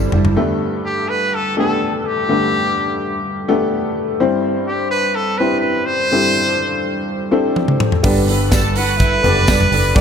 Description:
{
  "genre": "piano-driven pop",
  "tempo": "125 BPM",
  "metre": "4/4",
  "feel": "straight",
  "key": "G major",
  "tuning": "A4 = 441 Hz",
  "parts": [
    { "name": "warm upright piano", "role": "accompaniment", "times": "0.0-10.0 s", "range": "G2 to D5", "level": "-18 LUFS", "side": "left 2 dB", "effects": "lush chorus" },
    { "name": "fingerpicked steel-string acoustic guitar", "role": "riff", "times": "0.0-0.4, 8.0-10.0 s", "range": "G3 to C5", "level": "-23 LUFS", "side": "right 4 dB", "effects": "ensemble chorus" },
    { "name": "vintage muted fingered electric bass", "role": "bass", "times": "0.0-0.4, 8.0-10.0 s", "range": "F#1 to G1", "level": "-18 LUFS", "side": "equal", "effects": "none" },
    { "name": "modern studio drum kit", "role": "drums", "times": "0.1-0.4, 7.6-10.0 s", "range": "hi-hat, kick drum, snare drum, toms", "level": "-17 LUFS", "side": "equal", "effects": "none" },
    { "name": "clear trumpet", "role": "melody", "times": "0.9-10.0 s", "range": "G4 to D5", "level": "-19 LUFS", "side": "equal", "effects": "diffuse ambient delay" },
    { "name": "rich studio violin section", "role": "second line", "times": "8.3-9.7 s", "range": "D4 to B5", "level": "-24 LUFS", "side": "right 2 dB", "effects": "diffuse ambient delay" },
    { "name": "tambourine", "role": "percussion", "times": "8.5-9.6 s", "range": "none", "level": "-31 LUFS", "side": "left 6 dB", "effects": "none" }
  ],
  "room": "moderate church reverb, RT60 3.4 s",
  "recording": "dreamy mix soaked in reverb",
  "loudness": "-14 LUFS",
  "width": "side -7 dB against mid",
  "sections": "0.4-10.0 A section",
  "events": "drum fill 0.0-0.4, 7.6-8.0",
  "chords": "0.4 Gadd9; 4.2 Cadd9; 8.0 Gadd9"
}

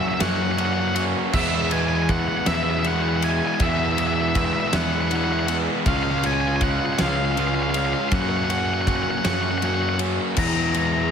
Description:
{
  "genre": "post-rock",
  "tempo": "53 BPM (dotted quarters)",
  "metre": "6/8",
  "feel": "straight",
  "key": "E lydian",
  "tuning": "A4 = 439 Hz",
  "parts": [
    { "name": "octave-fuzz lead guitar", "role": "melody", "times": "0.0-11.1 s", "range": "E5 to A#5", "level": "-26 LUFS", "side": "left 1 dB", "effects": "distortion, analog delay" },
    { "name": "crunchy overdriven guitar", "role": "riff", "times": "0.0-11.1 s", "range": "C#3 to F#4", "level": "-27 LUFS", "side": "left 10 dB", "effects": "spring reverb" },
    { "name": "crunchy overdriven guitar", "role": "riff", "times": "0.0-11.1 s", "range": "C#3 to F#4", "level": "-27 LUFS", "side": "right 15 dB", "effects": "none" },
    { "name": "fuzz fingered electric bass", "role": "bass", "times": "0.2-11.1 s", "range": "C#2 to F#2", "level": "-26 LUFS", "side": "right 1 dB", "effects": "overdrive" },
    { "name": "big rock drum kit", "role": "drums", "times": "0.2-10.9 s", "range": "crash cymbal, kick drum, ride cymbal, snare drum", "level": "-26 LUFS", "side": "equal", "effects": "none" },
    { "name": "airy breathy pad", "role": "sustained chords", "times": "10.8-11.1 s", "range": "F#3 to B4", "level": "-36 LUFS", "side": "right 1 dB", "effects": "none" }
  ],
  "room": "studio reverb",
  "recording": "none",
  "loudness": "-19 LUFS",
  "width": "side -7 dB against mid",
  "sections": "0.0-11.1 A section",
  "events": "none",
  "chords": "0.0 F#; 1.3 Eadd9; 5.9 C#; 8.1 F#; 10.4 Eadd9"
}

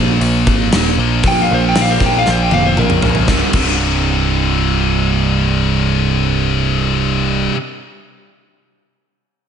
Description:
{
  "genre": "hard rock",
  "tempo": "117 BPM",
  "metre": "4/4",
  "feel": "straight",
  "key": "unclear",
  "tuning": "A4 = 443 Hz",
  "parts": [
    { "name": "heavy high-gain guitar", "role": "riff", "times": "0.0-7.6 s", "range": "C2 to Bb3", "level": "-18 LUFS", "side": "left 9 dB", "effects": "distortion, slapback echo" },
    { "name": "sludgy distorted guitar", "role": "riff", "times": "0.0-7.6 s", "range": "C2 to Bb3", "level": "-18 LUFS", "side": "right 7 dB", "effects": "overdrive, slapback echo" },
    { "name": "picked electric bass", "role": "bass", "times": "0.0-7.5 s", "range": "C1 to Bb1", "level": "-19 LUFS", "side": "equal", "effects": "none" },
    { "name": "gated 80s drum kit", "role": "drums", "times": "0.2-3.7 s", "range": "crash cymbal, hi-hat, kick drum, snare drum, toms", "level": "-17 LUFS", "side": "equal", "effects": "none" },
    { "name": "lightly driven lead guitar", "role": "melody", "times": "1.3-3.0 s", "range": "Bb4 to G5", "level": "-18 LUFS", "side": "left 1 dB", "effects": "slapback echo, tape echo" }
  ],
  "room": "moderate lush hall reverb, RT60 1.9 s, small room reverb",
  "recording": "big arena sound, nothing above 10.6 kHz",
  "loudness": "-12 LUFS",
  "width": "side -8 dB against mid",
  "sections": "0.0-3.3 A section; 3.3-7.4 B section",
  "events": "lead electric guitar solo 0.0-3.3; drum fill 2.3-3.3",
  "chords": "0.0 Bb5; 3.3 C5"
}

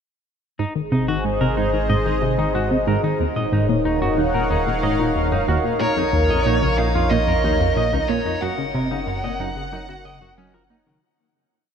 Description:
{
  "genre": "ambient, sequencer-driven space music",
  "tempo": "92 BPM",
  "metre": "4/4",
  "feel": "straight",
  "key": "unclear",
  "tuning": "A4 = 440 Hz",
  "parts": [
    { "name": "sweeping resonant pad", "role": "sustained chords", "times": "0.6-11.0 s", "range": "Eb4 to Gb5", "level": "-23 LUFS", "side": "equal", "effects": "chorus, shimmer reverb" },
    { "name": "semi-hollow electric guitar", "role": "arpeggios", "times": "0.6-11.0 s", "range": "Eb3 to Eb5", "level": "-28 LUFS", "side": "equal", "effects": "auto-pan, shimmer reverb, ping-pong delay" },
    { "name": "tight sequenced synth", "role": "riff", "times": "0.6-11.0 s", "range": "Db2 to Bb3", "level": "-22 LUFS", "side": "equal", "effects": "chorus, ping-pong delay" },
    { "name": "round analog bass", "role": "bass", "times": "0.6-11.0 s", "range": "Eb1 to Bb1", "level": "-27 LUFS", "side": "equal", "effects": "none" },
    { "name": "high-gain lead guitar", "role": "melody", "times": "5.8-10.3 s", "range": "Db5 to Gb5", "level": "-24 LUFS", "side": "right 2 dB", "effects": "distortion, shimmer reverb, ping-pong delay" }
  ],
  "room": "wet huge ambient reverb, RT60 8.3 s",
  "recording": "none",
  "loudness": "-18 LUFS",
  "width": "side -7 dB against mid",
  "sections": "0.6-11.0 A section",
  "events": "fade-out 7.5-11.0",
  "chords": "0.6 Ab; 3.2 Ebm7; 5.8 Bbm; 8.4 Gb"
}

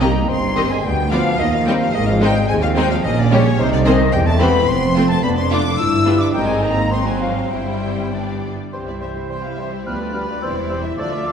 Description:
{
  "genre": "quick classical-period movement for symphony orchestra",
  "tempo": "108 BPM",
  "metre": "2/4",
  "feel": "rubato",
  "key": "C minor, C major from 4.1 s",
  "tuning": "A4 = 441 Hz",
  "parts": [
    { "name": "rich studio violin section", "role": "melody", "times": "0.0-11.3 s", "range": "C5 to E6", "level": "-26 LUFS", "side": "left 3 dB", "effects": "none" },
    { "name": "rich studio violin section", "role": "second line", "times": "0.0-11.3 s", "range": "D4 to E5", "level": "-28 LUFS", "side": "left 2 dB", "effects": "none" },
    { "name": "silver concert flute", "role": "second line", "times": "0.0-11.3 s", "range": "C5 to F6", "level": "-26 LUFS", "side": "left 2 dB", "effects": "none" },
    { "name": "rich studio viola section", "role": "accompaniment", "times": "0.0-11.3 s", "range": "Eb3 to F4", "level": "-24 LUFS", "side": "equal", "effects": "none" },
    { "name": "warm bassoon", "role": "accompaniment", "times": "0.0-11.3 s", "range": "G3 to E4", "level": "-26 LUFS", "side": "right 1 dB", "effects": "none" },
    { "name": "dark French horn section", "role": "sustained chords", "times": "0.0-11.3 s", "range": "C3 to G4", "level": "-23 LUFS", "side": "left 2 dB", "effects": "none" },
    { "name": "rich studio double bass section", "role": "bass", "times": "0.0-11.3 s", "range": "E1 to Eb2", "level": "-22 LUFS", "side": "right 2 dB", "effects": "none" },
    { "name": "warm studio cello section", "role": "bass", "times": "0.0-11.3 s", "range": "C2 to C3", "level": "-23 LUFS", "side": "right 2 dB", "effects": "none" },
    { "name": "timpani", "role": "percussion", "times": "0.0-0.5 s", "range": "C3", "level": "-31 LUFS", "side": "right 2 dB", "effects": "none" },
    { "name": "warm oboe", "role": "second line", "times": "8.7-11.3 s", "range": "A4 to C5", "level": "-32 LUFS", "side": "left 1 dB", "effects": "none" },
    { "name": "dark trumpet section", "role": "stabs", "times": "8.7-11.3 s", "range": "B4 to D5", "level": "-28 LUFS", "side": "right 2 dB", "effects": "none" }
  ],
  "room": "wet scoring stage reverb, RT60 1.6 s",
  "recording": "heard from further back in the room",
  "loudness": "-15 LUFS",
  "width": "side -7 dB against mid",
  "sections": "0.0-8.7 A section; 8.7-11.3 B section",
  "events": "none",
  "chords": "0.0 Cm; 0.8 Bdim/D; 1.4 Cm/Eb; 1.9 Ab; 3.0 Gdim/Bb; 3.6 Ab/C; 4.1 C/E; 4.7 F; 5.2 Dm/F; 5.8 G7; 6.3 Ab; 6.9 Ab7; 7.5 C/G; 8.1 G; 8.7 C; 9.9 G7/D; 10.4 C/E"
}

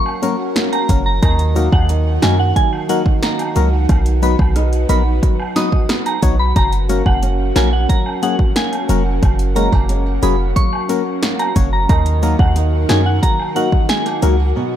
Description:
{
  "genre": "dancehall",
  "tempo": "90 BPM",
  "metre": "4/4",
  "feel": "straight",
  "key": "unclear",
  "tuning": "A4 = 440 Hz",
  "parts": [
    { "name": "soft synth bell", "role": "melody", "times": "0.0-14.4 s", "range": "F#5 to D#6", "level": "-22 LUFS", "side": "right 1 dB", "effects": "chorus, phaser, tape echo" },
    { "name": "airy breathy pad", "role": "sustained chords", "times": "0.0-14.8 s", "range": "C#4 to F#5", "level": "-25 LUFS", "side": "right 1 dB", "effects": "chorus, sidechain pumping" },
    { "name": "flamenco guitar", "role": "arpeggios", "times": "0.0-14.8 s", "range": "B2 to D#4", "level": "-25 LUFS", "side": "right 4 dB", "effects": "tape echo" },
    { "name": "woodblock and cabasa", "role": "percussion", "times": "0.1-14.4 s", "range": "none", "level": "-31 LUFS", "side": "right 4 dB", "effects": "tape echo" },
    { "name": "percussive organ stab", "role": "accompaniment", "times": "0.2-14.4 s", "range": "F#3 to C#5", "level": "-22 LUFS", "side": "left 7 dB", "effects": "chorus, tape echo" },
    { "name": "deep house drum kit", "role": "drums", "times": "0.2-14.4 s", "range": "hi-hat, kick drum, rim click, snare drum", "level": "-17 LUFS", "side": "equal", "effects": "overdrive" },
    { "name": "warm 808-style bass", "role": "bass", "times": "0.9-14.5 s", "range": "E#1 to F#2", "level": "-16 LUFS", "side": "equal", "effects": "none" }
  ],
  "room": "digital ambience",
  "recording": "echo-heavy mix",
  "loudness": "-13 LUFS",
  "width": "side -10 dB against mid",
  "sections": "0.0-14.8 A section",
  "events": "break 14.6",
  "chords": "0.0 F#; 1.2 D#m; 3.9 B; 6.6 F#; 11.9 D#m"
}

